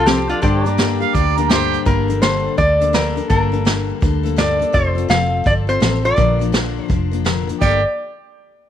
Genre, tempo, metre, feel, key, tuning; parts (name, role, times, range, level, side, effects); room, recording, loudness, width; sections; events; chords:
honky-tonk and classic country; 167 BPM; 4/4; swing 64% on 8ths; G minor; A4 = 444 Hz
lap resonator guitar; melody; 0.0-7.8 s; C4 to F5; -19 LUFS; equal
picked steel-string acoustic guitar; accompaniment; 0.0-7.8 s; G2 to Bb4; -22 LUFS; left 11 dB
pedal steel guitar; sustained chords; 0.0-1.9 s; A4 to G5; -26 LUFS; left 1 dB
vintage muted fingered electric bass; bass; 0.0-7.8 s; F1 to G2; -20 LUFS; right 1 dB
vintage brush drum kit; drums; 0.1-7.7 s; crash cymbal, hi-hat, kick drum, snare drum; -20 LUFS; right 1 dB
warm harmonica; second line; 1.0-1.8, 7.6-7.8 s; G4 to F5; -21 LUFS; right 10 dB; slapback echo
studio reverb; 1960s-style stereo with parts hard left and right; -14 LUFS; side -10 dB against mid
0.0-1.9 A section; 1.9-7.6 B section; 7.6-8.7 C section
0.4 Gm; 1.9 Gmadd9; 4.7 F; 6.2 Bb; 7.6 Gmadd9